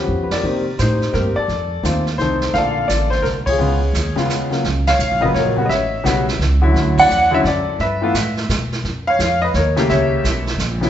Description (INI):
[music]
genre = jazz piano trio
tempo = 171 BPM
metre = 3/4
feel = swing 64% on 8ths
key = unclear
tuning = A4 = 437 Hz
[part]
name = clear grand piano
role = melody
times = 0.0-10.9 s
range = Db3 to F#5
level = -17 LUFS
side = left 1 dB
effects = none
[part]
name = upright bass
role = bass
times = 0.0-10.9 s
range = F#1 to C3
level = -20 LUFS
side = right 1 dB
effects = none
[part]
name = jazz brush drum kit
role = drums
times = 0.3-10.9 s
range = brushed snare drum, crash cymbal, hi-hat, kick drum, ride cymbal, snare drum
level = -26 LUFS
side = right 3 dB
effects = none
[sound]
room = wet recital hall reverb, RT60 1.3 s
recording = recorded in a church or concert hall, nothing above 7.8 kHz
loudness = -15 LUFS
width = side -10 dB against mid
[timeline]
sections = 0.0-4.6 A section; 4.6-10.9 B section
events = drum fill 0.1-0.4; band accent 0.3, 3.4, 4.8, 6.9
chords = 0.4 Cm7; 1.5 F7; 2.5 Bbmaj7; 3.6 Db7; 4.6 F#maj7; 5.7 A69; 6.7 Dmaj9; 7.8 G69; 8.8 F#maj7; 9.9 A7b9